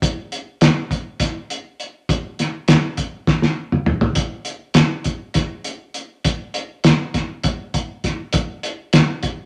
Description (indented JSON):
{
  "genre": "rock",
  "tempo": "202 BPM (eighths)",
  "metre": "7/8",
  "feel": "straight",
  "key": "none",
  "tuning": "none",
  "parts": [
    { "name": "cloth-damped thuddy drum kit", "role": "drums", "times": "0.0-9.4 s", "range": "hi-hat, kick drum, snare drum, toms", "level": "-19 LUFS", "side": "equal", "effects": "none" }
  ],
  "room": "wet studio reverb, RT60 0.7 s",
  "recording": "none",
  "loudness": "-20 LUFS",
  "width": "mono",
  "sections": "0.0-9.5 A section",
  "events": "drum fill 3.3-4.2",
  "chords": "none"
}